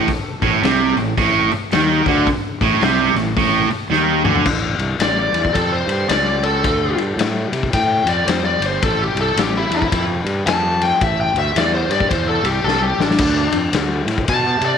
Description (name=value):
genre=blues rock power trio and southern rock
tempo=110 BPM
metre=4/4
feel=swing 62% on 8ths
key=A minor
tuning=A4 = 440 Hz
part: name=bluesy overdriven lead guitar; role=melody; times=0.0-14.8 s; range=D4 to A5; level=-19 LUFS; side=left 1 dB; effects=distortion
part: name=overdriven electric guitar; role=riff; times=0.0-4.5 s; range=A2 to D#3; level=-16 LUFS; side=right 3 dB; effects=none
part: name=fuzz fingered electric bass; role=bass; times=0.0-14.8 s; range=G1 to C3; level=-22 LUFS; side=right 1 dB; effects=overdrive
part: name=raw garage drum kit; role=drums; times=0.1-14.7 s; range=crash cymbal, hi-hat, kick drum, ride cymbal, snare drum, toms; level=-21 LUFS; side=left 4 dB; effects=none
room=moderate plate reverb, RT60 2.3 s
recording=1960s-style stereo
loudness=-15 LUFS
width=side -7 dB against mid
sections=0.0-4.5 A section; 4.5-14.8 B section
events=drum fill 3.9-4.5, 12.7-13.2; lead electric guitar solo 4.5-14.8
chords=0.0 Am; 4.5 Am7; 6.6 Dm7; 8.8 Am7; 13.2 Dm7